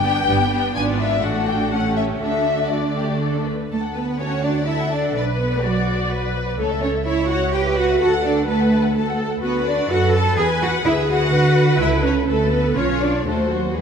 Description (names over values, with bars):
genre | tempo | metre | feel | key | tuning
quick classical-period movement for string orchestra | 125 BPM | 3/4 | straight | D major | A4 = 439 Hz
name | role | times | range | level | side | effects
warm symphonic violin section | melody | 0.0-13.8 s | A4 to A5 | -26 LUFS | left 5 dB | none
warm studio violin section | second line | 0.0-13.8 s | E#4 to A5 | -26 LUFS | left 4 dB | none
rich symphonic viola section | accompaniment | 0.0-13.8 s | A3 to D5 | -24 LUFS | right 1 dB | none
rich studio double bass section | bass | 0.0-13.8 s | G1 to D3 | -23 LUFS | right 2 dB | none
warm symphonic cello section | bass | 0.0-13.8 s | G2 to A4 | -22 LUFS | right 2 dB | none
room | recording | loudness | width
moderate scoring stage reverb, RT60 2.0 s | none | -17 LUFS | side -7 dB against mid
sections
0.0-3.7 A section; 3.7-13.8 B section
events
none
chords
0.0 G; 0.8 G#dim7; 1.2 D/A; 1.7 A7; 2.2 D; 5.2 Bm; 6.6 A/C#; 8.0 D; 9.4 Bm7/D; 10.8 E7/D; 11.8 A/C#; 12.3 Bm7b5/D; 13.3 D#dim7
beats
0.27 | 0.75 1.23 1.72 | 2.21 2.72 3.21 | 3.71 4.20 4.68 | 5.15 5.63 6.11 | 6.59 7.07 7.54 | 8.01 8.48 8.96 | 9.43 9.90 10.38 | 10.85 11.33 11.80 | 12.28 12.77 13.26 | 13.76